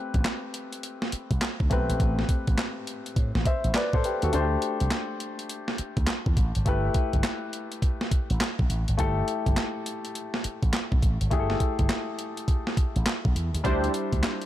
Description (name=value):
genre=R&B, new jack swing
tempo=103 BPM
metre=4/4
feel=swing 64% on 16ths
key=unclear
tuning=A4 = 440 Hz
part: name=clear baby grand piano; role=accompaniment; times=0.0-14.5 s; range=G3 to E5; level=-31 LUFS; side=left 3 dB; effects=none
part: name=slap bass with an envelope filter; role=bass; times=0.1-14.2 s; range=G1 to A2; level=-27 LUFS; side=equal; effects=none
part: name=clean 12-bit digital drum machine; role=drums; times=0.1-14.5 s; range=handclaps, hi-hat, kick drum, snare drum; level=-26 LUFS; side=equal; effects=none
part: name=funky polysynth comp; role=stabs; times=13.6-13.9 s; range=D4 to C5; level=-30 LUFS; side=right 2 dB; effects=chorus, ping-pong delay
room=little or no reverb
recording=none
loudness=-24 LUFS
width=side -13 dB against mid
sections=0.0-13.6 A section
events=break 4.3-5.5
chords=0.0 Am9; 4.3 D7sus4; 6.7 G69; 13.6 D9sus4